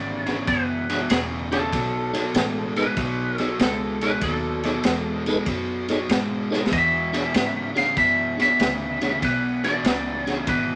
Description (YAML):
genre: electric blues shuffle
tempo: 96 BPM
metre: 4/4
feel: swing 67% on 8ths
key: unclear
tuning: A4 = 440 Hz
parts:
  - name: lightly driven lead guitar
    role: melody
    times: 0.0-10.8 s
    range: G#4 to E#5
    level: -27 LUFS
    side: equal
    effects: none
  - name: overdriven electric guitar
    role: riff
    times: 0.0-10.8 s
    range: E2 to G#3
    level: -29 LUFS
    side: equal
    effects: none
  - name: vintage muted fingered electric bass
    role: bass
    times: 0.0-10.8 s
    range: E1 to G#2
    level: -36 LUFS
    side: equal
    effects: none
  - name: tonewheel organ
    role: accompaniment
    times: 0.3-10.4 s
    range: D4 to C#5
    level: -30 LUFS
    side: equal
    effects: slow rotary speaker, overdrive, chorus vibrato
  - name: crunchy breakbeat drum kit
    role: drums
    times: 0.3-10.7 s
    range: kick drum, ride cymbal, snare drum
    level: -29 LUFS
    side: equal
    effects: none
room: moderate studio reverb, RT60 0.8 s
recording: none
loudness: -23 LUFS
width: mono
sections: 0.0-10.8 A section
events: drum fill 6.4-6.7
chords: 0.0 E13; 1.7 B13; 6.7 E13